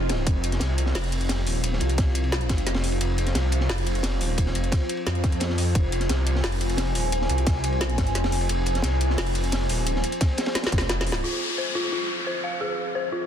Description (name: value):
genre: dark technical drum and bass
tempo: 175 BPM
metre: 4/4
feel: straight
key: F minor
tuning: A4 = 441 Hz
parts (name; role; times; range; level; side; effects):
- deep dark ambient pad; sustained chords; 0.0-13.3 s; F4 to Ab5; -30 LUFS; equal; chorus, built-in reverb, sidechain pumping
- wide detuned saw bass; bass; 0.0-11.2 s; Eb1 to F2; -24 LUFS; equal; chorus, overdrive
- swell and downlifter; sound effects; 0.0-0.3, 11.2-13.3 s; none; -30 LUFS; left 2 dB; none
- crunchy breakbeat drum kit; drums; 0.1-11.2 s; hi-hat, ride cymbal, snare drum; -32 LUFS; equal; high-pass filter on cymbals, high-pass filter on hats, high-pass filter on snare, high-pass filter on room
- drum and bass drum kit; drums; 0.1-11.2 s; hi-hat, snare drum; -30 LUFS; left 1 dB; none
- electronic kick drum; drums; 0.3-8.0, 10.2-10.8 s; none; -23 LUFS; equal; none
- dark detuned synth bell; arpeggios; 11.2-13.2 s; F4 to F5; -27 LUFS; left 2 dB; chorus, sidechain pumping, low-pass filter, dub echo
room: light reverb, studio reverb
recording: dense, heavily limited modern master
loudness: -22 LUFS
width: side -9 dB against mid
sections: 0.0-11.2 A section; 11.2-13.3 B section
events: break 0.0; swell 0.0; drum fill 10.6-11.2; filter sweep on ambient pad 11.2-13.3; filter sweep on synth bell 11.2-13.3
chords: 0.0 Fm; 11.2 F5